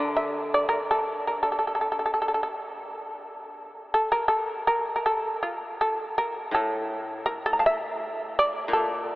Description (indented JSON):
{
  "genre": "japanese traditional, Japanese chamber music",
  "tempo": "83 BPM",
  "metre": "2/4",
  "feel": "rubato",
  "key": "A miyako bushi",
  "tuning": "A4 = 440 Hz",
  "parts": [
    { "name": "shamisen", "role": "melody", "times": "0.0-9.2 s", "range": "F4 to Bb5", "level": "-24 LUFS", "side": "equal", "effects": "none" },
    { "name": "koto", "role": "accompaniment", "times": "0.0-2.1, 6.5-9.2 s", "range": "A2 to D3", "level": "-34 LUFS", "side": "left 1 dB", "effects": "none" }
  ],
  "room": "wet huge ambient reverb, RT60 8.5 s",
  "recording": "in a vast, echoing space, telephone sound",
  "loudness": "-24 LUFS",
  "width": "side -19 dB against mid",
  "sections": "0.0-5.8 A section; 5.8-9.2 B section",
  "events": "none",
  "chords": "none",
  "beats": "0.70 | 1.43 2.15 | 2.86 3.57 | 4.28 5.03 | 5.78 6.53 | 7.26 7.99 | 8.71"
}